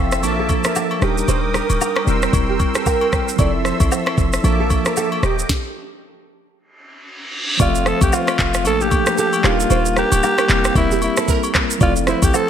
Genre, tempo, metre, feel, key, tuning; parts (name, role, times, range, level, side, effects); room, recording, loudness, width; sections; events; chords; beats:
afrobeats; 114 BPM; 4/4; swing 58% on 16ths; F major; A4 = 440 Hz
tine electric piano; accompaniment; 0.0-12.5 s; F3 to G5; -22 LUFS; equal; medium stereo tremolo
musette accordion; sustained chords; 0.0-5.5 s; Bb3 to E6; -25 LUFS; right 2 dB; sidechain pumping
short 808-style bass; bass; 0.0-12.3 s; D1 to Bb1; -20 LUFS; left 1 dB
afro-pop drum kit; drums; 0.1-12.5 s; handclaps, kick drum, rim click, shaker, snare drum; -20 LUFS; equal
agogo bells and woodblock; percussion; 0.2-12.5 s; -27 LUFS; left 6 dB
nylon-string guitar; riff; 0.4-12.5 s; G4 to D5; -24 LUFS; right 7 dB; ensemble chorus, digital delay
reverse cymbal; sound effects; 7.1-7.6 s; -24 LUFS; right 1 dB
breathy alto saxophone; melody; 7.6-12.5 s; E4 to A4; -20 LUFS; equal; digital delay
moderate lush hall reverb, RT60 1.8 s, studio reverb; bright 1980s-style digital production; -15 LUFS; side -9 dB against mid
0.0-7.6 A section; 7.6-12.5 B section
tine electric piano fill 2.6-3.4; stop 5.5-7.6; reverse cymbal 7.1-7.6
0.2 Bbmaj7; 1.0 Ebmaj7; 2.1 C7/E; 3.4 Fmaj7; 4.4 Bbmaj7; 5.2 Ebmaj7; 6.3 N.C.; 7.6 Fmaj7; 8.7 Bbmaj7; 9.4 Ebmaj7; 10.5 C7/E; 11.8 Fmaj7
0.23 0.76 | 1.28 1.81 2.34 2.86 | 3.39 3.92 4.44 4.97 | 5.49 6.02 6.55 7.07 | 7.60 8.12 8.65 9.18 | 9.70 10.23 10.76 11.28 | 11.81 12.34